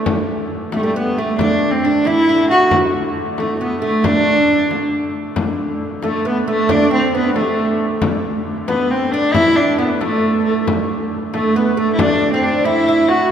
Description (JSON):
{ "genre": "medieval dance", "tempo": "90 BPM (dotted quarters)", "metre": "6/8", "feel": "straight", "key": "unclear", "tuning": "A4 = 440 Hz", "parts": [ { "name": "oud", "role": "second line", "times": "0.0-13.3 s", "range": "A3 to F#4", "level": "-20 LUFS", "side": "right 5 dB", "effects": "none" }, { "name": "dark hurdy-gurdy", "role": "drone", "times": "0.0-13.3 s", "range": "D3 to A3", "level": "-26 LUFS", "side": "equal", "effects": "none" }, { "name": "frame drum", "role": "percussion", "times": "0.1-13.2 s", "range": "none", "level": "-24 LUFS", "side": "left 3 dB", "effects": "none" }, { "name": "rich viola da gamba", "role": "melody", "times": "0.8-13.3 s", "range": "G3 to F#4", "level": "-17 LUFS", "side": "equal", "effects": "none" }, { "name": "bright reedy bass recorder", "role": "second line", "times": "6.0-13.3 s", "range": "F#4 to E5", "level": "-23 LUFS", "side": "left 4 dB", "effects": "none" } ], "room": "wet church reverb, RT60 3.8 s", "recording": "none", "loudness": "-14 LUFS", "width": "side -8 dB against mid", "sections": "0.0-5.4 A section; 5.4-13.3 A section", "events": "none", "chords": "none" }